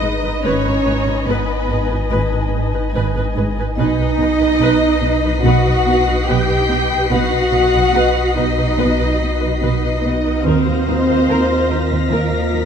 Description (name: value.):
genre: cinematic, suspense film score.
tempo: 72 BPM.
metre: 4/4.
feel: straight.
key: unclear.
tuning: A4 = 440 Hz.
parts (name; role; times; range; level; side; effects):
muted chamber violin section; melody; 0.0-12.7 s; A#4 to G5; -24 LUFS; left 3 dB; none.
muted symphonic violin section; second line; 0.0-12.7 s; A#4 to G5; -25 LUFS; left 2 dB; none.
muted chamber viola section; accompaniment; 0.0-12.7 s; A#4 to E#5; -24 LUFS; right 1 dB; none.
flickering grainy texture; sustained chords; 0.0-12.7 s; D#4 to D#6; -26 LUFS; left 2 dB; built-in reverb.
muted symphonic cello section; riff; 0.0-12.7 s; G#2 to B3; -23 LUFS; right 1 dB; none.
muted symphonic cello section; bass; 0.0-12.7 s; A#3 to G4; -19 LUFS; right 2 dB; none.
muted symphonic double bass section; bass; 0.0-12.4 s; G#1 to D#2; -24 LUFS; right 3 dB; none.
pure sine sub bass; drone; 0.0-12.7 s; G#1 to D#2; -22 LUFS; left 1 dB; none.
muted symphonic violin section; texture; 0.0-12.7 s; A#5 to C7; -31 LUFS; left 2 dB; none.
vibraphone with medium mallets; texture; 0.0-12.7 s; C4 to D#5; -30 LUFS; left 5 dB; none.
room: light reverb.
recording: close, detailed microphones.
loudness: -14 LUFS.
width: side -7 dB against mid.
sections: 0.0-12.7 A section.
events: none.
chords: 0.0 G#madd9; 3.8 B; 10.4 D#sus2.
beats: | 0.45 1.28 2.12 2.95 | 3.78 4.62 5.45 6.28 | 7.12 7.95 8.78 9.62 | 10.45 11.28 12.12.